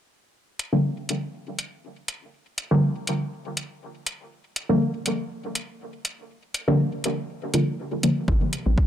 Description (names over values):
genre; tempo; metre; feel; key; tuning
dub techno; 121 BPM; 4/4; swing 53% on 16ths; G dorian; A4 = 435 Hz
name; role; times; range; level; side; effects
electronic hi-hat; drums; 0.6-8.6 s; none; -28 LUFS; equal; overdrive
filtered dub chord stab; stabs; 0.7-8.8 s; D3 to C4; -23 LUFS; equal; chorus, phaser, sidechain pumping, dub echo
pure sine sub bass; bass; 8.3-8.8 s; A1; -22 LUFS; equal; sidechain pumping
electronic kick drum; drums; 8.3-8.9 s; none; -22 LUFS; equal; overdrive
electronic toms; percussion; 8.3-8.4 s; none; -35 LUFS; left 2 dB; overdrive, sidechain pumping on toms, dub echo
room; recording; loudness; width
moderate echo chamber reverb, RT60 1.6 s, digital ambience; dry, gritty hardware recording, transformer saturation; -24 LUFS; side -10 dB against mid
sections
0.3-8.9 A section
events
filter sweep on synth stab 0.3-8.9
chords
0.3 Gm7; 8.3 Am7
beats
| 0.35 0.84 1.34 1.83 | 2.33 2.83 3.32 3.82 | 4.31 4.81 5.31 5.80 | 6.30 6.79 7.29 7.79 | 8.28 8.78